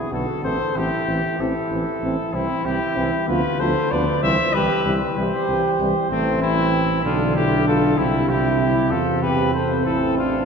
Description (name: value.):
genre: classical, brass quintet.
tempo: 64 BPM (dotted quarters).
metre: 6/8.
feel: rubato.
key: C major from 6.1 s.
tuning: A4 = 440 Hz.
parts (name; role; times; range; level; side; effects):
warm trumpet; melody; 0.0-10.4 s; C4 to E5; -24 LUFS; left 4 dB; none.
mellow flugelhorn; second line; 0.0-10.4 s; A3 to C5; -24 LUFS; right 4 dB; none.
mellow French horn; accompaniment; 0.1-10.4 s; G3 to E4; -26 LUFS; left 2 dB; none.
warm trombone; accompaniment; 0.1-10.4 s; C3 to F3; -26 LUFS; right 2 dB; none.
mellow bass trombone; bass; 0.1-10.4 s; A1 to E2; -26 LUFS; equal; none.
room: wet church reverb, RT60 3.9 s.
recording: none.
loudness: -18 LUFS.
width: side -6 dB against mid.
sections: 0.0-10.4 A section.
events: none.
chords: 0.4 Am; 2.3 C; 3.3 Bdim/D; 4.2 C; 6.1 Am; 7.0 G13/B; 8.0 C; 8.9 C/E; 9.9 Am.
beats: | 0.44 1.39 | 2.34 3.28 | 4.24 5.18 | 6.11 7.05 | 7.98 8.91 | 9.86.